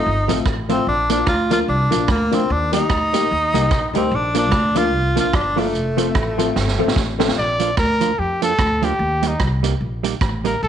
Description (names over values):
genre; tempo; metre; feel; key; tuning
ska; 148 BPM; 4/4; swing 58% on 8ths; Bb major; A4 = 438 Hz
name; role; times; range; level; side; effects
bright tenor saxophone; melody; 0.0-7.0 s; A3 to F4; -20 LUFS; equal; slapback echo
upright bass; bass; 0.1-10.7 s; F1 to F2; -22 LUFS; equal; none
hollow-body jazz guitar; accompaniment; 0.3-10.5 s; F3 to G4; -25 LUFS; right 10 dB; none
warm upright piano; stabs; 0.3-7.3 s; A3 to Bb4; -23 LUFS; left 10 dB; slapback echo
vintage drum kit; drums; 0.3-10.5 s; hi-hat, kick drum, rim click, snare drum; -23 LUFS; right 2 dB; slapback echo
clear trumpet; melody; 7.4-10.7 s; Eb4 to D5; -20 LUFS; equal; none
room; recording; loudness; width
light reverb, small room ambience; 1960s-style stereo with parts hard left and right, nothing above 10.7 kHz; -16 LUFS; side -9 dB against mid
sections
0.0-7.4 A section; 7.4-10.7 B section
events
drum fill 6.6-7.4; trumpet solo 7.4-10.7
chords
0.0 F; 0.9 Bb; 2.5 Eb; 4.1 Bb; 5.7 F; 7.4 Bb; 9.0 Eb